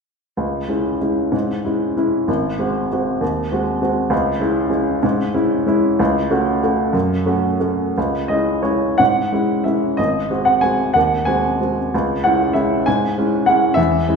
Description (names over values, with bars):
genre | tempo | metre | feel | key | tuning
classical, piano waltz | 156-208 BPM | 3/4 | rubato | C# minor | A4 = 438 Hz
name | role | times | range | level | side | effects
warm upright piano | solo | 0.4-14.2 s | G#1 to G#5 | -16 LUFS | equal | none
room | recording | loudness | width
wet stone room reverb, RT60 1.4 s | heard from further back in the room | -16 LUFS | side -5 dB against mid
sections
0.4-8.0 A section; 8.0-14.2 B section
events
none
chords
0.4 C#m; 2.3 G#7; 4.1 C#m; 6.0 F#m/C#; 8.0 C#m; 10.0 G#7; 11.9 C#m